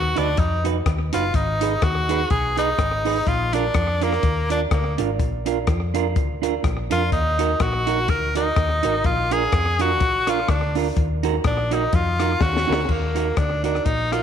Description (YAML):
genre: ska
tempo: 125 BPM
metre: 4/4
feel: swing 56% on 8ths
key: Eb harmonic minor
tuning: A4 = 441 Hz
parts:
  - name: edgy tenor saxophone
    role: melody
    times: 0.0-12.9 s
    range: Bb3 to Bb4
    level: -23 LUFS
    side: left 1 dB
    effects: none
  - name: hollow-body short-scale fingered electric bass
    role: bass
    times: 0.0-14.2 s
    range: F#1 to F2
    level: -25 LUFS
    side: left 1 dB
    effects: none
  - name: semi-hollow electric guitar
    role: accompaniment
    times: 0.2-14.2 s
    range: D4 to B4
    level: -25 LUFS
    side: right 9 dB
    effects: spring reverb
  - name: compact cocktail drum kit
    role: drums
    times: 0.2-14.2 s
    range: crash cymbal, hi-hat, kick drum, rim click, snare drum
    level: -24 LUFS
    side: left 3 dB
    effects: slapback echo
  - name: bright tenor saxophone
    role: melody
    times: 12.9-14.2 s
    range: Bb3 to F4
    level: -25 LUFS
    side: equal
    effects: none
room: moderate echo chamber reverb, RT60 1.7 s, small room ambience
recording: 1960s-style stereo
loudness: -19 LUFS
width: side -8 dB against mid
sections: 0.0-12.9 A section; 12.9-14.2 B section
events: tenor saxophone solo 0.0-12.9; drum fill 12.4-12.9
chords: 0.0 B; 1.3 Abm; 3.3 Bb; 7.1 Ebm; 9.0 Bb; 11.0 Ebm